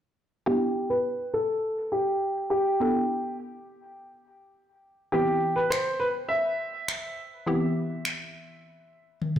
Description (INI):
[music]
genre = dance-pop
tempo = 103 BPM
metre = 4/4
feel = straight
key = unclear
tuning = A4 = 440 Hz
[part]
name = warm baby grand piano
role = melody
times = 0.5-9.2 s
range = G4 to E5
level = -26 LUFS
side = equal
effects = low-pass filter, dub echo
[part]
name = hollow square pluck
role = accompaniment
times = 0.5-9.4 s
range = E3 to A4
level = -28 LUFS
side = equal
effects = chorus, low-pass filter
[part]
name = pop drum kit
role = drums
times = 5.7-9.4 s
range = finger snaps, toms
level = -29 LUFS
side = left 1 dB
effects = overdrive
[sound]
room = moderate plate reverb, RT60 1.7 s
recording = played on a big sound system in a bare room, large studio reverb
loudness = -25 LUFS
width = side -10 dB against mid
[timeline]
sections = 0.5-9.4 A section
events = filter sweep 0.5-9.4; drum fill 9.2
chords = 0.5 Em7; 5.1 Cmaj7/E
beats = | 0.48 1.06 1.64 2.23 | 2.81 3.39 3.97 4.55 | 5.14 5.72 6.30 6.89 | 7.47 8.05 8.63 9.22